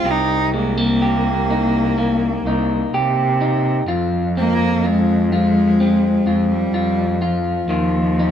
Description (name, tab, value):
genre	folk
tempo	63 BPM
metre	4/4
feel	straight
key	F minor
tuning	A4 = 440 Hz
part	warm cello	melody	0.0-8.3 s	F3 to F4	-19 LUFS	equal	none
part	electric guitar through a small old amp	accompaniment	0.0-8.3 s	F2 to G4	-20 LUFS	equal	none
part	warm cello	bass	0.1-8.3 s	C2 to C3	-21 LUFS	equal	none
room	light reverb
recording	none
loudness	-15 LUFS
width	side -9 dB against mid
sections	0.0-8.3 A section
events	none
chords	0.1 Cm7; 3.9 Fm; 7.7 Ebsus2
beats	| 0.06 1.02 1.98 2.93 | 3.89 4.84 5.80 6.75 | 7.71